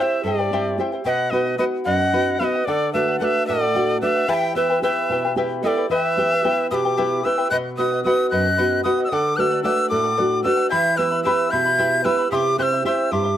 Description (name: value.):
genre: andean folk, Andean ensemble.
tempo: 74 BPM (dotted quarters).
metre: 6/8.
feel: straight.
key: E minor.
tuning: A4 = 445 Hz.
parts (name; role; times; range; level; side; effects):
breathy bright quena; melody; 0.0-13.4 s; D5 to G6; -22 LUFS; left 2 dB; slapback echo.
breathy bright large pan pipes; second line; 0.0-13.4 s; G4 to E5; -23 LUFS; right 5 dB; none.
charango; accompaniment; 0.0-13.4 s; E4 to C6; -25 LUFS; left 5 dB; none.
nylon-string guitar; accompaniment; 0.0-13.4 s; F#2 to G4; -24 LUFS; equal; none.
room: small room reverb.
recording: dry, close 1970s-style studio recording.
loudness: -18 LUFS.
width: side -10 dB against mid.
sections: 0.0-7.5 A section; 7.5-13.4 A section.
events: none.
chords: 0.0 C; 1.1 B; 2.7 D; 4.3 Em; 7.5 B; 9.1 D; 10.7 Em; 12.3 C.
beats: 0.24 | 1.06 1.87 | 2.68 3.48 | 4.29 5.10 | 5.91 6.71 | 7.52 8.32 | 9.12 9.92 | 10.72 11.53 | 12.32 13.12.